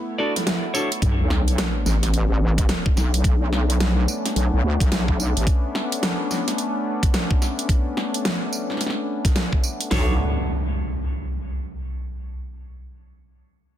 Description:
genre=glitch hop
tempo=108 BPM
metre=4/4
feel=swing 62% on 16ths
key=B minor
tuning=A4 = 440 Hz
part: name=warm analog pad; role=sustained chords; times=0.0-10.2 s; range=C#3 to E4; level=-28 LUFS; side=left 2 dB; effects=chorus, sidechain pumping
part: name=clean electric guitar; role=stabs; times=0.2-0.9, 9.9-10.1 s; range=D4 to D5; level=-28 LUFS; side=equal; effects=sidechain pumping, dub echo
part: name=dubstep drum kit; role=drums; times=0.4-9.9 s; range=hi-hat, snare drum, tambourine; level=-25 LUFS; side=right 1 dB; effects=overdrive
part: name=wobble bass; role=bass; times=1.0-5.5, 9.9-10.2 s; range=A1 to D2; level=-20 LUFS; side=equal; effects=chorus
part: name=dubstep drum kit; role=drums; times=1.0-10.1 s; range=hi-hat, kick drum, snare drum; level=-20 LUFS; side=equal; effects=overdrive
part: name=sub drop and impact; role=sound effects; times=1.0-3.2, 10.0-12.1 s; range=none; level=-27 LUFS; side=equal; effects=none
room=light reverb, digital ambience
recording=dense, heavily limited modern master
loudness=-20 LUFS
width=side -11 dB against mid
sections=0.0-1.0 A section; 1.0-9.9 B section; 9.9-12.1 C section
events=break 0.0-1.0; drop 0.0-1.0; impact 1.0-3.2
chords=0.0 Bm9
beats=0.47 | 1.02 1.58 2.14 2.69 | 3.25 3.80 4.36 4.91 | 5.47 6.03 6.58 7.14 | 7.69 8.25 8.80 9.36 | 9.91 10.47 11.03 11.58

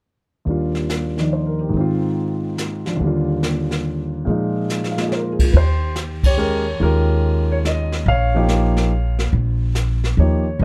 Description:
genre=jazz piano trio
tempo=142 BPM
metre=3/4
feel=swing 66% on 8ths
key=Eb major, Eb mixolydian from 5.5 s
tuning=A4 = 440 Hz
part: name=warm concert grand piano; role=melody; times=0.5-10.6 s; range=Eb2 to F5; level=-22 LUFS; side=equal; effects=plate reverb
part: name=jazz brush drum kit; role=drums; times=0.5-10.6 s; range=brushed snare drum, crash cymbal, hi-hat, kick drum, ride cymbal, snare drum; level=-26 LUFS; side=equal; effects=none
part: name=upright bass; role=bass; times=5.5-10.6 s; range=Ab1 to Eb2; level=-20 LUFS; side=equal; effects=none
room=little or no reverb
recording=dark, warm production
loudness=-19 LUFS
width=mono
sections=0.5-5.5 A section; 5.5-10.6 B section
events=drum fill 4.7-5.1; band accent 6.2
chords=0.5 Ebmaj9; 1.7 Ab6; 3.0 Ebmaj9; 4.3 Bb7sus4; 5.5 Eb9; 9.3 N.C.; 10.2 Eb9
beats=| 0.47 0.90 1.32 | 1.74 2.16 2.59 | 3.01 3.43 3.85 | 4.28 4.70 5.12 | 5.54 5.96 6.39 | 6.81 7.23 7.65 | 8.07 8.50 8.92 | 9.34 9.76 10.19 | 10.61

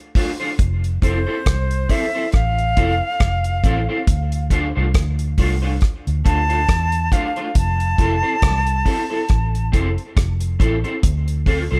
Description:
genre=roots reggae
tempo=69 BPM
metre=4/4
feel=swing 56% on 16ths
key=F major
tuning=A4 = 442 Hz
part: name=electric guitar at the edge of break-up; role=accompaniment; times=0.2-11.8 s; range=A3 to C5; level=-27 LUFS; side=equal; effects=ensemble chorus, tape echo
part: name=damped 70s drum kit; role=drums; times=0.2-11.7 s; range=hi-hat, kick drum, rim click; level=-20 LUFS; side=equal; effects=none
part: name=vintage muted fingered electric bass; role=bass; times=0.6-11.8 s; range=F1 to E2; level=-23 LUFS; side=equal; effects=none
part: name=silver concert flute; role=melody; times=1.0-9.7 s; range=C5 to A5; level=-25 LUFS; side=equal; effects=tape echo
room=light reverb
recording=none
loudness=-19 LUFS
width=mono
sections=0.6-11.8 A section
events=flute solo 0.6-11.8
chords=0.0 Dm7; 0.6 Fmaj7; 4.1 Dm7; 7.6 Fmaj7; 11.0 Dm7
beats=| 0.59 1.46 2.33 3.20 | 4.07 4.94 5.81 6.68 | 7.55 8.42 9.29 10.16 | 11.04

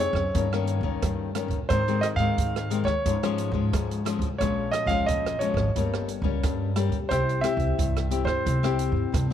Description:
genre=samba and choro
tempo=89 BPM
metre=4/4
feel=straight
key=unclear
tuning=A4 = 441 Hz
part: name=warm grand piano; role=melody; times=0.0-9.3 s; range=C5 to F5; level=-28 LUFS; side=right 2 dB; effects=none
part: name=nylon-string guitar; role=accompaniment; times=0.0-9.3 s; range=F2 to Ab4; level=-28 LUFS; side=left 8 dB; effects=none
part: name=upright bass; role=bass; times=0.0-9.3 s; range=G1 to Ab3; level=-28 LUFS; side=right 1 dB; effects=none
part: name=open jazz drum kit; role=drums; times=0.0-9.3 s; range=hi-hat, kick drum, rim click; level=-31 LUFS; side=right 4 dB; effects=none
room=light reverb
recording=1960s-style stereo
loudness=-23 LUFS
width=side -10 dB against mid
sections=0.0-9.3 A section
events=none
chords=0.3 Eb7; 1.7 Ab; 3.1 Db/Ab; 4.4 Bbm7; 5.8 Gdim; 7.1 C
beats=0.35 1.03 | 1.70 2.38 3.06 3.73 | 4.41 5.08 5.76 6.43 | 7.11 7.79 8.46 9.13

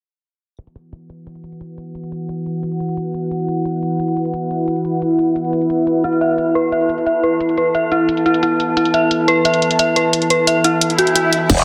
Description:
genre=dark technical drum and bass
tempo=176 BPM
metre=4/4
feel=straight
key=unclear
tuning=A4 = 440 Hz
part: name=deep dark ambient pad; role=sustained chords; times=1.9-11.6 s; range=E4 to A5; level=-21 LUFS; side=equal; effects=chorus, built-in reverb, sidechain pumping
part: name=drum and bass drum kit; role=drums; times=0.6-11.6 s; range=crash cymbal, hi-hat, tambourine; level=-22 LUFS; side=equal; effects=none
part: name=dark detuned synth bell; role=arpeggios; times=6.0-11.3 s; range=E4 to E5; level=-18 LUFS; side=equal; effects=chorus, sidechain pumping, dub echo
part: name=swell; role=sound effects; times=10.9-11.5 s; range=none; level=-23 LUFS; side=equal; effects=none
part: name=growl bass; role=bass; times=11.5-11.6 s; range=E1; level=-16 LUFS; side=equal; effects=chorus, overdrive, sidechain pumping
part: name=electronic kick drum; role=drums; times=11.5-11.6 s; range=none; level=-20 LUFS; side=equal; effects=none
room=wet lush hall reverb, RT60 1.9 s, digital ambience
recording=dense, heavily limited modern master, low-pass filter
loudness=-17 LUFS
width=mono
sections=0.6-11.5 A section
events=filter sweep 0.6-11.5; swell 10.9-11.5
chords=0.6 E5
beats=| 0.59 0.93 1.27 1.61 | 1.95 2.29 2.63 2.97 | 3.31 3.65 4.00 4.34 | 4.68 5.02 5.36 5.70 | 6.04 6.38 6.72 7.06 | 7.41 7.75 8.09 8.43 | 8.77 9.11 9.45 9.79 | 10.13 10.47 10.81 11.15 | 11.50

